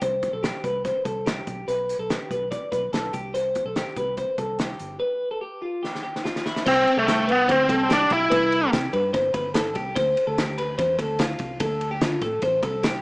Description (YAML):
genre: jangly indie pop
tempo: 145 BPM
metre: 4/4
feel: straight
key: C major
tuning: A4 = 439 Hz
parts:
  - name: twelve-string electric guitar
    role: arpeggios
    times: 0.0-13.0 s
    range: E4 to D5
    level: -24 LUFS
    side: left 1 dB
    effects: spring reverb, analog delay
  - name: vintage muted fingered electric bass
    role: bass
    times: 0.0-13.0 s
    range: G1 to D3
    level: -33 LUFS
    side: equal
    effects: none
  - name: loose indie drum kit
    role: drums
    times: 0.0-12.9 s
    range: crash cymbal, hi-hat, kick drum, ride cymbal, snare drum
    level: -28 LUFS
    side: equal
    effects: none
  - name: biting lead guitar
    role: melody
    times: 6.7-8.7 s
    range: A3 to E4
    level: -19 LUFS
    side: equal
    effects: overdrive
room: light reverb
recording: rough home demo mix, small speaker sound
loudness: -21 LUFS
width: side -27 dB against mid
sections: 0.0-6.7 A section; 6.7-13.0 B section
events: drum fill 5.8-6.7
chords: 0.0 C5; 1.5 G/B; 3.1 C5; 5.0 Fsus2; 5.8 Em; 6.7 C5; 10.0 Dm7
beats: | 0.02 0.43 0.85 1.27 | 1.68 2.10 2.52 2.93 | 3.35 3.76 4.18 4.59 | 5.01 5.42 5.84 6.25 | 6.67 7.08 7.49 7.91 | 8.32 8.73 9.14 9.55 | 9.96 10.37 10.79 11.20 | 11.61 12.02 12.43 12.84